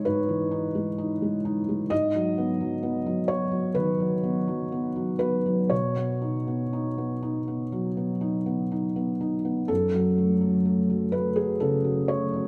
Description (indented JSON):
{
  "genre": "neoclassical minimalist piano",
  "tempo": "59-66 BPM",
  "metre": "4/4",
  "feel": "rubato",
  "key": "unclear",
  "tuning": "A4 = 439 Hz",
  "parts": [
    { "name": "felt-muted upright piano", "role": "solo", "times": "0.0-12.5 s", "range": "F#2 to D#5", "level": "-26 LUFS", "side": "equal", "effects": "none" }
  ],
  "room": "moderate scoring stage reverb, RT60 2.0 s",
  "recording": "close, detailed microphones",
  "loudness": "-26 LUFS",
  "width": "mono",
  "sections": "0.0-12.5 A section",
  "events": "none",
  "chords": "0.0 Emaj7/G#; 1.9 G#m7; 5.7 Badd9; 9.7 F#m"
}